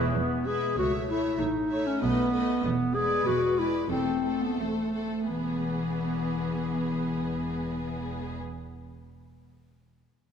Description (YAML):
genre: quick classical-period movement for symphony orchestra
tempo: 83-99 BPM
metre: 2/4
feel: rubato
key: E major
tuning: A4 = 440 Hz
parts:
  - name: rich studio cello section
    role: bass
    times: 0.0-8.4 s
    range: C#2 to B2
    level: -37 LUFS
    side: right 3 dB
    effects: none
  - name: rich studio double bass section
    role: bass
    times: 0.0-8.4 s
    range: E1 to C#2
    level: -36 LUFS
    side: right 3 dB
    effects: none
  - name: warm clarinet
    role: second line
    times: 0.2-8.4 s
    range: E3 to G#4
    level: -28 LUFS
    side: left 2 dB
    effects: none
  - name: rich studio violin section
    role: melody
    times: 0.5-8.4 s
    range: B4 to E5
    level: -43 LUFS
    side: left 4 dB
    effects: none
  - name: rich studio violin section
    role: second line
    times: 0.5-8.4 s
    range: G#4 to C#5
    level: -38 LUFS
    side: left 3 dB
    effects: none
  - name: rich studio viola section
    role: accompaniment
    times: 0.5-8.4 s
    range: G#3 to B3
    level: -35 LUFS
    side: right 2 dB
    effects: none
room: wet concert hall reverb, RT60 2.4 s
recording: minimal, uncompressed stereo recording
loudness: -26 LUFS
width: side -7 dB against mid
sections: 0.2-5.3 A section; 5.3-8.1 B section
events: slowing down 2.0-5.3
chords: 0.2 E; 0.8 A/C#; 1.4 A; 2.0 B7; 2.6 E7; 3.9 Am/E; 5.3 E